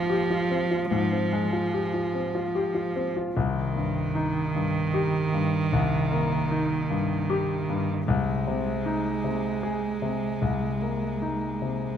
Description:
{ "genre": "neoclassical piano and strings", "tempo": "76 BPM", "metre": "3/4", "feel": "rubato", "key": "C minor", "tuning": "A4 = 440 Hz", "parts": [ { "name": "warm cello", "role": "second line", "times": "0.0-12.0 s", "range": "Eb3 to Ab3", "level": "-28 LUFS", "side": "right 6 dB", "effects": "none" }, { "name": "clear concert grand piano", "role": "accompaniment", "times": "0.0-12.0 s", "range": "C2 to Ab4", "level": "-26 LUFS", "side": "left 3 dB", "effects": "none" } ], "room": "moderate scoring stage reverb, RT60 1.7 s", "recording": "close, detailed microphones", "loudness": "-24 LUFS", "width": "side -9 dB against mid", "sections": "0.0-3.4 A section; 3.4-12.0 B section", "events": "none", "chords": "0.0 Fmadd9/Ab; 3.4 Cm7; 8.1 Abadd9/C", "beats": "0.11 | 0.92 1.73 2.55 | 3.36 4.15 4.94 | 5.72 6.51 7.29 | 8.07 8.85 9.63 | 10.41 11.21" }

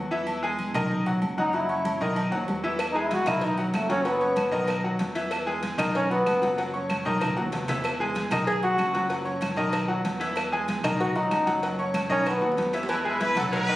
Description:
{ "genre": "latin, salsa", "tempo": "190 BPM", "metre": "4/4", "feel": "straight", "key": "E major", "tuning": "A4 = 440 Hz", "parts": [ { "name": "bright grand piano", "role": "accompaniment", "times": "0.0-13.8 s", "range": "D#3 to C#6", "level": "-28 LUFS", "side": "left 1 dB", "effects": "none" }, { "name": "fingered electric bass", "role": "bass", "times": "0.0-13.8 s", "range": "F#1 to E2", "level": "-32 LUFS", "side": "right 1 dB", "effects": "none" }, { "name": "congas", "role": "percussion", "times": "0.1-13.8 s", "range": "none", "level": "-34 LUFS", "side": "equal", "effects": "none" }, { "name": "agogo bells and timbales", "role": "percussion", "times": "0.3-13.8 s", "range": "none", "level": "-36 LUFS", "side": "right 2 dB", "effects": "none" }, { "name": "bright trombone", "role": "melody", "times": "1.4-12.7 s", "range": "F#3 to G#4", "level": "-25 LUFS", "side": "equal", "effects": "none" }, { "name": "claves", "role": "percussion", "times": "2.8-12.4 s", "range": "none", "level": "-37 LUFS", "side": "right 3 dB", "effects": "none" }, { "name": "cowbell", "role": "percussion", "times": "2.8-13.7 s", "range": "none", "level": "-36 LUFS", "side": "left 2 dB", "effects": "none" }, { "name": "brilliant horn section", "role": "melody", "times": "12.9-13.8 s", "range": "G#3 to B4", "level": "-26 LUFS", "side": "equal", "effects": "none" }, { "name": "clear baritone saxophone", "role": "second line", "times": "12.9-13.8 s", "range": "E3 to F#3", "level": "-30 LUFS", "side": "right 1 dB", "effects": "none" } ], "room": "moderate large studio reverb, RT60 1.2 s", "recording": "recorded on a phone in the room, studio reverb", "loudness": "-23 LUFS", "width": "side -16 dB against mid", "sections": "0.0-12.9 A section", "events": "trombone solo 0.0-12.9; drum fill 2.2-2.8, 6.9-7.8, 12.1-12.9", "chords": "0.3 E; 0.9 B; 1.5 F#5; 2.2 B; 2.8 E; 3.4 B; 4.1 F#5; 4.7 B; 5.3 E; 6.0 B; 6.6 F#5; 7.2 B; 7.8 E; 8.5 B; 9.1 F#5; 9.7 B; 10.4 E; 11.0 B; 11.6 F#5; 12.3 B; 12.9 E", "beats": "| 0.27 0.59 0.91 1.22 | 1.54 1.85 2.17 2.48 | 2.80 3.12 3.43 3.75 | 4.06 4.38 4.69 5.01 | 5.32 5.64 5.95 6.27 | 6.58 6.90 7.21 7.53 | 7.84 8.16 8.48 8.79 | 9.11 9.42 9.74 10.05 | 10.37 10.68 11.00 11.31 | 11.62 11.94 12.26 12.57 | 12.88 13.20 13.52" }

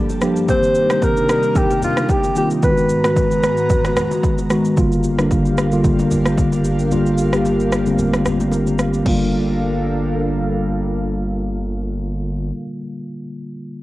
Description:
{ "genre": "amapiano", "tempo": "112 BPM", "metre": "4/4", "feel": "swing 55% on 16ths", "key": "G minor", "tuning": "A4 = 440 Hz", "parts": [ { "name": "breathy alto saxophone", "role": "melody", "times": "0.0-4.5 s", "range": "D4 to C5", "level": "-19 LUFS", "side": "equal", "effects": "cassette tape, tape echo" }, { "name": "mellow tine electric piano", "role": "accompaniment", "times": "0.0-13.8 s", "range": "D3 to A4", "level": "-19 LUFS", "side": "left 1 dB", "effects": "slow stereo tremolo, low-pass filter, cassette tape" }, { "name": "airy breathy pad", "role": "sustained chords", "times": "0.0-12.5 s", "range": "G2 to Bb5", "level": "-25 LUFS", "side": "equal", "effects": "chorus, sidechain pumping, low-pass filter, cassette tape" }, { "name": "deep house drum kit", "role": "drums", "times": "0.1-9.2 s", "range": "crash cymbal, kick drum, rim click, shaker", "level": "-21 LUFS", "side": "equal", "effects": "overdrive, vintage 12-bit sampler grit, cassette tape" }, { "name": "bongos and congas", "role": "percussion", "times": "0.1-9.3 s", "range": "none", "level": "-30 LUFS", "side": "right 1 dB", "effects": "none" }, { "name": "round analog bass", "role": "bass", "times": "4.8-12.5 s", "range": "G1", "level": "-25 LUFS", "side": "equal", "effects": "none" } ], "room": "light reverb", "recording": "home recording on cassette", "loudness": "-15 LUFS", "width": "side -17 dB against mid", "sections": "0.0-4.8 A section; 4.8-9.1 B section; 9.1-13.3 C section", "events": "none", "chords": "0.5 Cm7; 2.6 Abm7; 4.8 Gm7", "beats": "| 0.49 1.02 1.56 2.09 | 2.63 3.16 3.70 4.24 | 4.77 5.31 5.84 6.38 | 6.91 7.45 7.99 8.52 | 9.06 9.59 10.13 10.66 | 11.20 11.74 12.27 12.81" }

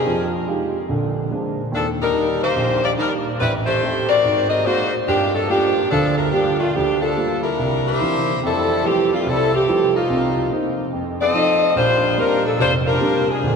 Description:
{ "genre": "jazz", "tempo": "144 BPM", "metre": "4/4", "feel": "swing 64% on 8ths", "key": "unclear", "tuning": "A4 = 440 Hz", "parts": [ { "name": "clear saxophone section", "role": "melody", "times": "0.0-13.6 s", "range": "Eb3 to Eb5", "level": "-18 LUFS", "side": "left 1 dB", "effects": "none" }, { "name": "warm grand piano", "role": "accompaniment", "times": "0.1-13.6 s", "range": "F1 to G4", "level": "-22 LUFS", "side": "right 2 dB", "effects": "none" } ], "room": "wet cathedral reverb, RT60 5.2 s", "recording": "recorded in a church or concert hall", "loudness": "-16 LUFS", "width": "side -5 dB against mid", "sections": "0.0-8.4 A section; 8.4-13.6 B section", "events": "none", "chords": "0.1 Fm9; 0.9 Bb9; 1.7 Ebmaj7; 3.4 Am7; 4.2 Ab9; 5.1 Gm9; 7.6 C9; 8.4 Fmaj9; 10.1 Cm7; 10.9 F7; 11.8 Bb69", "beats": "| 0.06 0.48 0.90 1.31 | 1.73 2.15 2.57 2.99 | 3.40 3.82 4.24 4.66 | 5.08 5.50 5.91 6.33 | 6.75 7.17 7.58 8.00 | 8.42 8.84 9.26 9.67 | 10.09 10.51 10.93 11.34 | 11.76 12.18 12.60 13.02 | 13.43" }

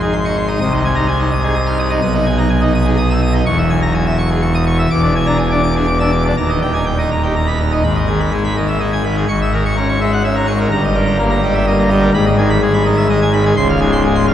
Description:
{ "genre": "classical, organ toccata", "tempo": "126 BPM", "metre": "3/4", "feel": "straight", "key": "G# minor", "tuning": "A4 = 438 Hz", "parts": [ { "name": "pipe organ, full organ", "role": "solo", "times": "0.0-14.3 s", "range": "Db1 to F6", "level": "-12 LUFS", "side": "equal", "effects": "none" } ], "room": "wet cathedral reverb, RT60 5.3 s", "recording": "heard from further back in the room", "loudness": "-13 LUFS", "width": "side -10 dB against mid", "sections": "0.0-7.8 A section; 7.8-14.3 B section", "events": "none", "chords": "0.0 Ab; 0.6 Ab/C; 2.0 G#m/B; 3.5 C#m/E; 4.9 E7; 6.4 D#; 7.8 G#m; 9.3 A#m7b5/G#; 10.7 D#/G; 12.1 G#m; 13.6 Dbmaj7", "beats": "0.14 | 0.62 1.09 1.56 | 2.03 2.51 2.99 | 3.47 3.94 4.42 | 4.90 5.39 5.87 | 6.37 6.86 7.36 | 7.85 8.33 8.81 | 9.29 9.77 10.24 | 10.72 11.19 11.67 | 12.14 12.61 13.09 | 13.56 14.03" }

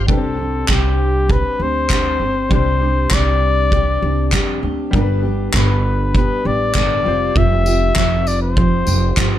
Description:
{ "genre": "acoustic pop", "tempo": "99 BPM", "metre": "4/4", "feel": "straight", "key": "unclear", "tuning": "A4 = 441 Hz", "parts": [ { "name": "fingerpicked steel-string acoustic guitar", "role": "accompaniment", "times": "0.0-9.4 s", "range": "G2 to G4", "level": "-21 LUFS", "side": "right 1 dB", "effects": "double-tracked left and right, plate reverb" }, { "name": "warm concert grand piano", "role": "accompaniment", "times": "0.0-9.4 s", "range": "G3 to C5", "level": "-29 LUFS", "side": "left 5 dB", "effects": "plate reverb" }, { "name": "upright bass", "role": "bass", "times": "0.0-9.4 s", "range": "F1 to F2", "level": "-19 LUFS", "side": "right 1 dB", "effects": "none" }, { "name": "warm flugelhorn", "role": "melody", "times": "0.1-9.4 s", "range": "G4 to E5", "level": "-20 LUFS", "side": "left 4 dB", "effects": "plate reverb" }, { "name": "loose indie drum kit", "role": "drums", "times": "0.1-9.3 s", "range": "handclaps, kick drum, tambourine", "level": "-19 LUFS", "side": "right 1 dB", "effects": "none" } ], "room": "light reverb", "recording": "none", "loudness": "-14 LUFS", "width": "side -12 dB against mid", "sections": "0.1-9.4 A section", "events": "none", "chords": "0.1 Csus2; 4.9 G; 7.1 Fsus2", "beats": "| 0.09 0.69 1.30 1.90 | 2.51 3.11 3.72 4.33 | 4.93 5.54 6.14 6.75 | 7.36 7.96 8.57 9.17" }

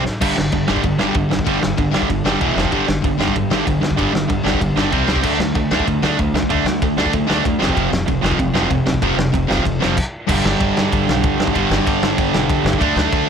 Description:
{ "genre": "punk rock", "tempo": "191 BPM", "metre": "4/4", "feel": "straight", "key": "unclear", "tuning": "A4 = 440 Hz", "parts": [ { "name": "distorted electric guitar", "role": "riff", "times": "0.0-13.3 s", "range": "E2 to D4", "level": "-20 LUFS", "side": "right 13 dB", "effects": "overdrive" }, { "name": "sludgy distorted guitar", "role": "riff", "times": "0.0-13.3 s", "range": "E2 to D4", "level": "-21 LUFS", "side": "left 11 dB", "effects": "overdrive" }, { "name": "upright bass", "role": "bass", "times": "0.0-13.2 s", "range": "E1 to E2", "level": "-25 LUFS", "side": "equal", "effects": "none" }, { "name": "loose indie drum kit", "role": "drums", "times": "0.1-13.2 s", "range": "crash cymbal, kick drum, ride cymbal, snare drum", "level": "-20 LUFS", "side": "equal", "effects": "none" } ], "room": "light reverb", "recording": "none", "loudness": "-15 LUFS", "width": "side -7 dB against mid", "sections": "0.2-10.3 A section; 10.3-13.3 B section", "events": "drum fill 0.0; stop 10.0-10.3", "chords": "0.2 G5; 2.4 E5; 2.6 F5; 2.7 G5; 4.9 C5; 5.2 D5; 7.6 F5; 10.3 G5", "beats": "| 0.21 0.52 0.83 1.15 | 1.46 1.77 2.09 2.40 | 2.72 3.03 3.35 3.66 | 3.98 4.29 4.60 4.92 | 5.23 5.55 5.86 6.18 | 6.49 6.81 7.12 7.44 | 7.76 8.07 8.39 8.70 | 9.02 9.33 9.65 9.96 | 10.28 10.60 10.91 11.22 | 11.54 11.86 12.17 12.48 | 12.80 13.11" }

